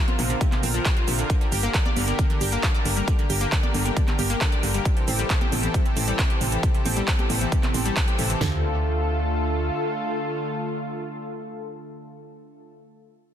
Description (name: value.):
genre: uplifting trance.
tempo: 135 BPM.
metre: 4/4.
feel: straight.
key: D minor.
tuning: A4 = 440 Hz.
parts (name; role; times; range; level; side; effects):
lush unison pad; sustained chords; 0.0-12.7 s; D3 to Bb4; -28 LUFS; left 1 dB; chorus, sidechain pumping.
analog pluck; arpeggios; 0.0-8.6 s; C3 to D5; -30 LUFS; right 1 dB; chorus, sidechain pumping, digital delay.
big-room dance drum kit; drums; 0.1-8.4 s; congas, handclaps, hi-hat, shaker; -27 LUFS; right 2 dB; overdrive.
solid FM bass; bass; 0.2-9.7 s; G1 to D2; -26 LUFS; equal; sidechain pumping.
big-room dance drum kit; drums; 0.4-8.5 s; kick drum, snare drum, toms; -23 LUFS; equal; none.
room: light reverb.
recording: dense, heavily limited modern master.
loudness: -21 LUFS.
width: side -10 dB against mid.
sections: 0.0-8.4 A section; 8.4-12.0 B section.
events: drop 0.0-8.4.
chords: 0.0 Bbadd9; 1.3 Gm; 4.9 Am7; 8.4 Dm.